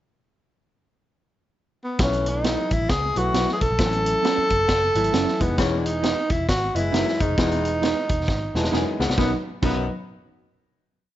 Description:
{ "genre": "uptempo 1960s-style soul", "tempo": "134 BPM", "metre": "4/4", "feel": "swing 60% on 8ths", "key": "B mixolydian", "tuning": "A4 = 441 Hz", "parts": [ { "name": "breathy tenor saxophone", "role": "melody", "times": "1.8-9.9 s", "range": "B3 to A4", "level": "-24 LUFS", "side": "equal", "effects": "none" }, { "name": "warm upright piano", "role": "accompaniment", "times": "2.0-9.9 s", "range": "D#3 to A5", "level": "-28 LUFS", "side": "left 1 dB", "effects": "none" }, { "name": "vintage muted picked electric bass", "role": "bass", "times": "2.0-9.9 s", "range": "E1 to C#2", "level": "-27 LUFS", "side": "equal", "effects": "none" }, { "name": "vintage drum kit", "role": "drums", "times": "2.0-9.8 s", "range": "crash cymbal, hi-hat, kick drum, snare drum", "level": "-25 LUFS", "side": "equal", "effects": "none" }, { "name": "mellow electric guitar", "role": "stabs", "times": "2.4-9.8 s", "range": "B3 to B4", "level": "-29 LUFS", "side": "right 8 dB", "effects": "slapback echo" }, { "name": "breathy baritone saxophone", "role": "riff", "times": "5.6-9.9 s", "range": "E2 to G#2", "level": "-29 LUFS", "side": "left 8 dB", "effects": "none" } ], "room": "light reverb", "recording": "nothing above 7.7 kHz", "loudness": "-20 LUFS", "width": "side -13 dB against mid", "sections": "0.2-2.0 pickup bar; 2.0-9.2 verse; 9.2-11.0 final chord", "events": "drum fill 8.3-9.2; upright piano fill 8.3-9.2", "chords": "0.2 N.C.; 2.0 B7sus4; 3.8 A6; 5.4 Emaj7; 9.2 B" }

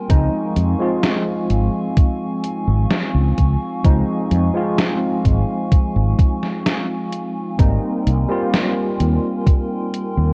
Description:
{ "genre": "vaporwave", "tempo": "64 BPM", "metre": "4/4", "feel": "straight", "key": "unclear", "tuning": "A4 = 441 Hz", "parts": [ { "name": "tine electric piano", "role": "accompaniment", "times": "0.0-10.3 s", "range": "F3 to F4", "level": "-24 LUFS", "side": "equal", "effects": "analog chorus, analog delay" }, { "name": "warbly tape-like pad", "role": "sustained chords", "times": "0.0-10.3 s", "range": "C4 to Db6", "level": "-31 LUFS", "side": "equal", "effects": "chorus, built-in reverb" }, { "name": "mellow fretless electric bass", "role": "bass", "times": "0.1-10.3 s", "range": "Ab1 to F2", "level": "-19 LUFS", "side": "equal", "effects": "none" }, { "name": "electronic kick drum", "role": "drums", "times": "0.1-9.7 s", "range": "none", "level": "-17 LUFS", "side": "equal", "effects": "none" }, { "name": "gated 80s digital drum machine", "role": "drums", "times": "0.1-10.1 s", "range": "hi-hat, snare drum", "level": "-24 LUFS", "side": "equal", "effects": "gated reverb, gated reverb snare" } ], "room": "digital ambience", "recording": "worn, warbling old tape, cassette tape, warbly pitch drift", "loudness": "-19 LUFS", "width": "mono", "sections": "0.0-10.3 A section", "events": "none", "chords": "0.1 Dbmaj7; 7.6 Abmaj9" }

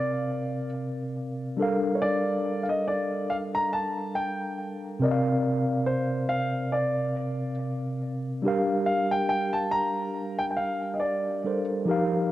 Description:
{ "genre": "R&B", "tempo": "70 BPM", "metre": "4/4", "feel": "swing 58% on 16ths", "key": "G minor", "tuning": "A4 = 440 Hz", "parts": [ { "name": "dark grand piano", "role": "melody", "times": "0.0-11.6 s", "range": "C5 to Bb5", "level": "-28 LUFS", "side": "equal", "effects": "cassette tape, analog delay" }, { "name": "mellow tine electric piano", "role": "accompaniment", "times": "0.0-12.3 s", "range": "C3 to F5", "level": "-27 LUFS", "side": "equal", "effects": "medium stereo tremolo, cassette tape" } ], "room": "moderate lush hall reverb, RT60 2.8 s", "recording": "home recording on cassette", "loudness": "-25 LUFS", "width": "side -14 dB against mid", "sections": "0.0-12.3 A section", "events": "none", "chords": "0.0 C9sus4; 1.6 Gm9; 5.0 C9sus4; 8.4 Gm9" }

